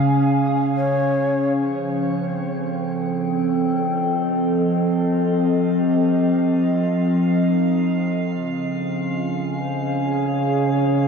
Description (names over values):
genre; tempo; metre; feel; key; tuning
ambient; 71 BPM; 4/4; straight; unclear; A4 = 440 Hz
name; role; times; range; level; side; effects
warbly tape-like pad; sustained chords; 0.0-11.1 s; Db3 to Ab5; -18 LUFS; equal; chorus, built-in reverb, shimmer reverb
concert harp; arpeggios; 0.0-1.6 s; G3 to Ab3; -43 LUFS; right 1 dB; none
breathy mellow long shakuhachi; melody; 0.8-11.1 s; Eb4 to Db5; -30 LUFS; equal; shimmer reverb, ping-pong delay
drifting glass-harmonics texture; texture; 3.8-11.1 s; F5; -38 LUFS; right 2 dB; chorus, built-in reverb, shimmer reverb
room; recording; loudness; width
wet huge ambient reverb, RT60 8.0 s; dark, warm production; -18 LUFS; side -6 dB against mid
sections
0.0-1.6 A section; 1.6-11.1 B section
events
fade-in on synth texture 1.6-11.1; fade-in on shakuhachi 1.6-11.1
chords
0.0 Db; 1.6 F7; 8.3 Db